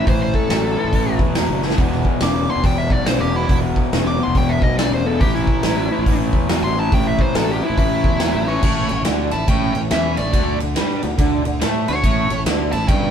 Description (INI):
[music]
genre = blues rock power trio and southern rock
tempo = 140 BPM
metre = 4/4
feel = swing 62% on 8ths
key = A mixolydian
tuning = A4 = 440 Hz
[part]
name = nasal lead guitar with a parked wah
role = melody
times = 0.0-13.1 s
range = E4 to D6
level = -23 LUFS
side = equal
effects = overdrive
[part]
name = raw garage guitar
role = riff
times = 0.0-13.1 s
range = E2 to A3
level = -22 LUFS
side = left 1 dB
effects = overdrive, spring reverb
[part]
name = fuzz fingered electric bass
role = bass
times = 0.0-13.1 s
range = E1 to A2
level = -22 LUFS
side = equal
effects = overdrive
[part]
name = big rock drum kit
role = drums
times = 0.1-13.0 s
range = crash cymbal, hi-hat, kick drum, ride cymbal, snare drum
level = -19 LUFS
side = equal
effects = none
[part]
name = nasal lead guitar with a parked wah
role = second line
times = 8.5-13.1 s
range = A3 to E4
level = -28 LUFS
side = right 3 dB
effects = overdrive
[sound]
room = moderate studio reverb, RT60 0.8 s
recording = band playing live in one room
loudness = -16 LUFS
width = side -8 dB against mid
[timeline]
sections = 0.0-8.6 A section; 8.6-13.1 B section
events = lead electric guitar solo 0.0-8.6; drum fill 1.6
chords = 0.0 A5; 1.8 E5; 5.2 A5; 8.6 A; 10.3 D5; 12.0 A7